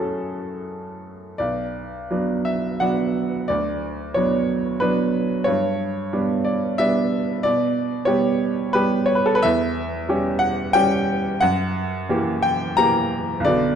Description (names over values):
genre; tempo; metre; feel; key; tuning
classical, romantic character piece for solo piano; 79-94 BPM; 3/4; rubato; B minor; A4 = 439 Hz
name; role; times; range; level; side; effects
bright baby grand piano; solo; 0.0-13.8 s; B1 to A#5; -19 LUFS; right 1 dB; none
room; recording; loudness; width
moderate recital hall reverb, RT60 1.5 s; dark, warm production; -19 LUFS; side -8 dB against mid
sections
0.0-1.4 A section; 1.4-13.8 B section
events
none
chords
0.0 F#m; 1.4 Bm; 3.5 Bm/D; 5.5 G; 7.5 G/B; 9.4 C#dim/E; 11.4 F#7b9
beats
0.68 | 1.41 2.12 2.81 | 3.49 4.15 4.82 | 5.47 6.14 6.80 | 7.45 8.09 8.75 | 9.45 10.10 10.75 | 11.42 12.09 12.78 | 13.45